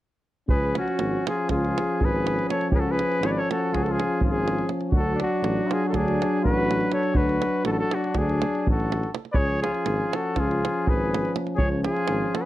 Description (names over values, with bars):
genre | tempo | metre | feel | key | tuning
balkan folk, Balkan brass band | 244 BPM (eighths) | 9/8 | straight | C# phrygian dominant | A4 = 440 Hz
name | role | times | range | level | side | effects
warm trumpet | melody | 0.5-12.5 s | F#4 to D5 | -27 LUFS | equal | slapback echo
clear flugelhorn | second line | 0.5-12.5 s | C#4 to B4 | -32 LUFS | left 4 dB | none
warm French horn | accompaniment | 0.5-12.5 s | C#4 to D4 | -31 LUFS | left 6 dB | none
warm euphonium | accompaniment | 0.5-12.5 s | E#3 to F#3 | -30 LUFS | right 4 dB | none
mellow tuba | bass | 0.5-12.2 s | G#1 to D2 | -28 LUFS | equal | none
davul | percussion | 0.5-12.4 s | none | -26 LUFS | right 1 dB | none
room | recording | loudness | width
light reverb | dry, close 1970s-style studio recording | -22 LUFS | side -14 dB against mid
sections
0.5-12.5 A section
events
none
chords
0.5 C#; 4.9 D; 9.4 C#